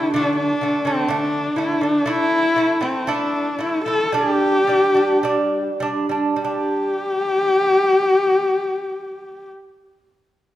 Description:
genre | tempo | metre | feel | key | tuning
mongolian traditional, Mongolian folk | 50-65 BPM | 4/4 | straight | G zhi mode | A4 = 440 Hz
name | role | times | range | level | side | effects
clear horsehead fiddle | melody | 0.0-9.5 s | C4 to A4 | -18 LUFS | left 2 dB | none
lute | arpeggios | 0.0-9.5 s | D3 to E4 | -22 LUFS | right 3 dB | none
room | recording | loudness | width
wet recital hall reverb, RT60 1.4 s | none | -17 LUFS | side -13 dB against mid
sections
0.0-6.4 A section; 6.4-10.6 B section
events
slowing down 0.0-6.4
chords
0.0 D5; 2.1 A5; 4.1 G5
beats
0.15 1.10 | 2.07 3.07 4.12 5.23 | 6.40 7.61 8.81

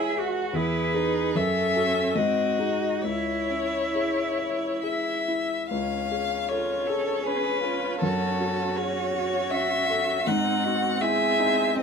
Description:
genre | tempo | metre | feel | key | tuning
classical, slow romantic movement for piano quartet | 65-84 BPM | 3/4 | rubato | C# minor | A4 = 440 Hz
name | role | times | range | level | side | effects
rich violin | melody | 0.0-11.8 s | A4 to F#5 | -27 LUFS | left 5 dB | none
clear cello | second line | 0.0-11.8 s | B#3 to A4 | -29 LUFS | right 6 dB | none
dark concert grand piano | accompaniment | 0.0-11.8 s | C#2 to G#5 | -30 LUFS | left 1 dB | none
rich viola | accompaniment | 0.0-11.8 s | B#3 to A4 | -31 LUFS | right 2 dB | none
room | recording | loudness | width
moderate studio reverb, RT60 0.6 s | none | -23 LUFS | side -6 dB against mid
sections
0.0-5.7 A section; 5.7-11.8 B section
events
none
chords
0.0 C#m; 0.5 E; 1.4 F#m; 2.2 G#; 3.0 C#m; 5.7 C#7; 8.0 F#m; 10.3 G#7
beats
| 0.54 1.36 2.16 | 3.03 3.94 4.83 | 5.71 6.50 7.26 | 8.02 8.78 9.52 | 10.27 11.02 11.76

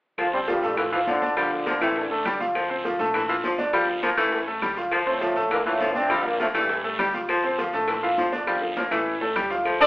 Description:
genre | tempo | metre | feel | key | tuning
latin, salsa | 203 BPM | 4/4 | straight | D minor | A4 = 442 Hz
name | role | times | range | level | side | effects
brilliant trombone section | melody | 0.2-2.4, 4.9-7.1 s | G2 to F4 | -27 LUFS | equal | none
bright baritone saxophone | second line | 0.2-9.9 s | E3 to A3 | -26 LUFS | left 1 dB | none
upright bass | bass | 0.2-9.9 s | G1 to D2 | -41 LUFS | equal | none
bongos and cowbell | percussion | 0.2-9.8 s | none | -34 LUFS | left 1 dB | none
claves | percussion | 0.2-9.8 s | none | -36 LUFS | equal | none
congas | percussion | 0.2-9.9 s | none | -42 LUFS | equal | none
guiro | percussion | 0.2-9.9 s | none | -38 LUFS | right 1 dB | none
bright concert grand piano | accompaniment | 0.3-9.9 s | E3 to F5 | -25 LUFS | equal | none
clear horn section | melody | 9.8-9.9 s | D4 to D5 | -12 LUFS | equal | none
room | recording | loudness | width
moderate large studio reverb, RT60 1.2 s | band playing live in one room, telephone sound | -21 LUFS | side -20 dB against mid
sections
0.2-9.7 A section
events
drum fill 8.5-9.7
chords
0.2 Dm7; 0.8 Bbmaj7; 1.4 Gm9; 2.0 A7sus4; 2.6 Dm7; 3.1 Bbmaj7; 3.7 Gm9; 4.3 A7sus4; 4.9 Dm7; 5.5 Bbmaj7; 6.1 Gm9; 6.7 A7sus4; 7.3 Dm7; 7.9 Bbmaj7; 8.5 Gm9; 9.1 A7sus4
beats
| 0.18 0.48 0.78 1.07 | 1.37 1.66 1.96 2.26 | 2.55 2.85 3.14 3.44 | 3.74 4.03 4.33 4.62 | 4.92 5.21 5.51 5.81 | 6.10 6.40 6.70 6.99 | 7.29 7.58 7.88 8.18 | 8.47 8.77 9.06 9.36 | 9.66

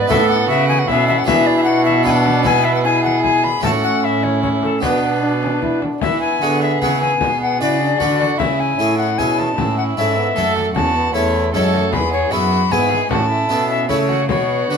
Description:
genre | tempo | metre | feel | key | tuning
classical, renaissance-style consort dance | 152 BPM | 3/4 | straight | unclear | A4 = 440 Hz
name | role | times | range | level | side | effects
bright tenor recorder | melody | 0.0-14.8 s | A4 to B5 | -19 LUFS | left 6 dB | none
warm violin | second line | 0.0-14.8 s | C#4 to B4 | -22 LUFS | right 5 dB | none
clear trombone | accompaniment | 0.0-14.8 s | G#3 to E4 | -22 LUFS | equal | none
harpsichord | accompaniment | 0.0-14.8 s | E2 to D5 | -22 LUFS | right 1 dB | none
rich cello | bass | 0.0-14.8 s | E2 to E3 | -22 LUFS | right 3 dB | none
frame drum | percussion | 0.1-14.5 s | none | -25 LUFS | left 5 dB | none
room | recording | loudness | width
moderate stone room reverb, RT60 1.1 s | minimal, uncompressed stereo recording | -14 LUFS | side -6 dB against mid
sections
0.0-6.0 A section; 6.0-14.8 B section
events
none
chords
0.1 A; 1.3 Bm; 2.5 E/B; 3.6 A; 4.8 Bm; 6.0 E; 7.2 Bm; 8.4 C#m; 9.6 A; 11.9 E; 13.1 A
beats
| 0.10 0.49 0.89 | 1.28 1.67 2.06 | 2.45 2.85 3.24 | 3.64 4.03 4.42 | 4.82 5.22 5.62 | 6.02 6.42 6.82 | 7.21 7.61 8.00 | 8.39 8.79 9.18 | 9.57 9.97 10.36 | 10.75 11.14 11.53 | 11.93 12.32 12.71 | 13.10 13.50 13.89 | 14.29 14.70

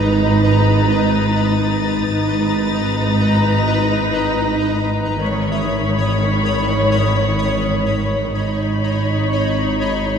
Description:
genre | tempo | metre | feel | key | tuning
cinematic, suspense film score | free time | none | none | G# minor | A4 = 440 Hz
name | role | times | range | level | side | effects
muted studio violin section | melody | 0.0-10.2 s | A#5 to B5 | -27 LUFS | left 4 dB | none
muted studio violin section | second line | 0.0-10.2 s | B4 to C#5 | -25 LUFS | left 2 dB | none
muted studio viola section | accompaniment | 0.0-10.2 s | D#3 to D#4 | -23 LUFS | right 1 dB | none
pulsing gated texture | sustained chords | 0.0-10.2 s | B4 to D#6 | -25 LUFS | left 2 dB | chorus, built-in reverb
muted studio cello section | bass | 0.0-10.2 s | G#2 | -22 LUFS | right 3 dB | none
muted studio double bass section | bass | 0.0-10.2 s | G#1 | -22 LUFS | right 2 dB | none
analog drone | drone | 0.0-10.2 s | G#1 | -23 LUFS | left 2 dB | chorus
clear baby grand piano | texture | 0.0-10.2 s | E5 | -38 LUFS | left 2 dB | none
muted studio violin section | texture | 0.0-4.9 s | D#6 to A6 | -29 LUFS | left 5 dB | none
room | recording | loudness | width
wet concert hall reverb, RT60 1.8 s | none | -15 LUFS | side -7 dB against mid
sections
0.0-10.2 A section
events
none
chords
0.0 G#madd9; 5.2 Badd9/G#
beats
free time

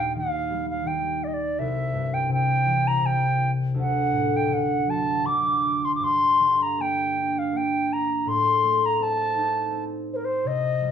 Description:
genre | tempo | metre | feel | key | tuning
celtic folk, Celtic slow air | 82 BPM | 3/4 | rubato | unclear | A4 = 440 Hz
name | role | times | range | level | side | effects
mellow wooden flute | melody | 0.0-10.9 s | Bb4 to D6 | -23 LUFS | equal | none
concert harp | accompaniment | 0.0-10.9 s | C2 to Eb4 | -26 LUFS | left 1 dB | none
room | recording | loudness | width
wet large studio reverb, RT60 0.8 s | band playing live in one room | -21 LUFS | side -8 dB against mid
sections
0.0-10.9 A section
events
none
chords
0.0 Eb; 1.6 C; 3.8 D; 6.0 Gm; 8.3 Adim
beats
0.15 0.87 | 1.58 2.30 3.02 | 3.75 4.50 5.25 | 6.02 6.78 7.53 | 8.26 8.99 9.73 | 10.45

